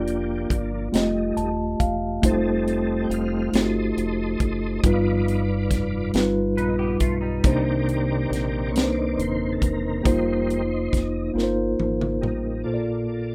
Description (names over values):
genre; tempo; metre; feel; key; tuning
slow gospel; 46 BPM (dotted quarters); 6/8; straight; unclear; A4 = 440 Hz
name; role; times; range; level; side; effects
mellow tine electric piano; accompaniment; 0.0-13.3 s; Bb1 to A5; -26 LUFS; equal; plate reverb
tonewheel organ; sustained chords; 0.0-13.3 s; Eb3 to G5; -33 LUFS; equal; fast rotary speaker, chorus vibrato, plate reverb
deep dub fingered electric bass; bass; 0.0-12.6 s; Eb1 to C2; -32 LUFS; equal; none
tight funk drum kit; drums; 0.1-12.4 s; hi-hat, kick drum, snare drum, toms; -26 LUFS; equal; none
clean electric guitar; second line; 6.6-7.6 s; G3 to B4; -35 LUFS; equal; analog chorus
room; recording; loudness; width
moderate small room reverb, RT60 0.5 s; rough home demo mix; -23 LUFS; mono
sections
0.0-12.7 A section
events
tonewheel organ solo 0.0-12.7; tine electric piano fill 0.9-2.2; drum fill 11.4-12.7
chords
0.0 Bb/F; 0.9 F9; 2.2 F7; 4.8 G7b13; 7.4 Cm9; 10.1 F7sus4; 12.7 Bbmaj7